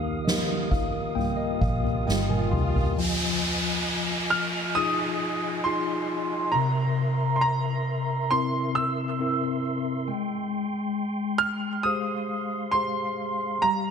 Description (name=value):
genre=pop ballad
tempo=68 BPM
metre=4/4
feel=straight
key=F minor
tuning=A4 = 440 Hz
part: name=warm grand piano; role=melody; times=0.0-13.9 s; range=F5 to F6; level=-27 LUFS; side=right 2 dB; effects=analog chorus, digital delay
part: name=tine electric piano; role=accompaniment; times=0.0-13.9 s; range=C3 to C6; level=-28 LUFS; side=left 2 dB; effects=medium stereo tremolo
part: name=mellow tonewheel organ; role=sustained chords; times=0.0-13.9 s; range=Ab3 to Eb6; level=-33 LUFS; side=equal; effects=chorus vibrato, stopped rotary speaker
part: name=nylon-string guitar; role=arpeggios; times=0.0-3.0 s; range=Eb3 to F4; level=-33 LUFS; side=right 4 dB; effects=wide subtle chorus
part: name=vintage muted fingered electric bass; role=bass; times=0.0-3.0 s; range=G1 to Eb2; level=-29 LUFS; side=equal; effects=none
part: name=swell and downlifter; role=sound effects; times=1.5-10.1 s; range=none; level=-32 LUFS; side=equal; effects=none
part: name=soft-mallet drum kit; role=drums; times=0.3-3.0 s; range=kick drum, snare drum, toms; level=-28 LUFS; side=equal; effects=gated reverb
room=moderate plate reverb, RT60 2.4 s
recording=bright 1980s-style digital production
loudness=-24 LUFS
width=side -6 dB against mid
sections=0.0-3.0 A section; 3.0-13.9 B section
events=tine electric piano fill 0.3-3.0; swell 1.5-3.0; drum fill 2.1-3.0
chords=0.0 Ebadd9; 3.0 Fm7; 6.5 C7; 10.1 Abmaj7